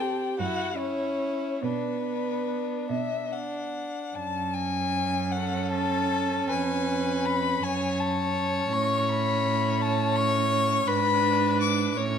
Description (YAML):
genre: classical, slow romantic movement for string quartet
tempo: 46-58 BPM (dotted quarters)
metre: 6/8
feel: rubato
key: B minor, F# minor from 4.2 s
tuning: A4 = 439 Hz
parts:
  - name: dark violin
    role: melody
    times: 0.0-12.0 s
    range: B4 to D6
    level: -28 LUFS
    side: left 8 dB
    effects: none
  - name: warm violin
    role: second line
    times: 0.0-12.2 s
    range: C4 to C#5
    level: -31 LUFS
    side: left 1 dB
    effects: none
  - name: rich viola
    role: accompaniment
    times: 0.0-12.2 s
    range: B3 to G4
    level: -31 LUFS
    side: right 4 dB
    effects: none
  - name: warm cello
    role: bass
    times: 0.0-12.2 s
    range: E2 to B2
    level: -30 LUFS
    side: right 6 dB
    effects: none
room: moderate scoring stage reverb, RT60 1.9 s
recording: close, detailed microphones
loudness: -24 LUFS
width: side -7 dB against mid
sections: 0.0-4.2 A section; 4.2-12.2 B section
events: none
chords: 0.4 F#5; 1.6 Bm; 4.2 F#m; 6.5 C#7/E#; 7.6 F#m; 8.7 A; 10.9 G#dim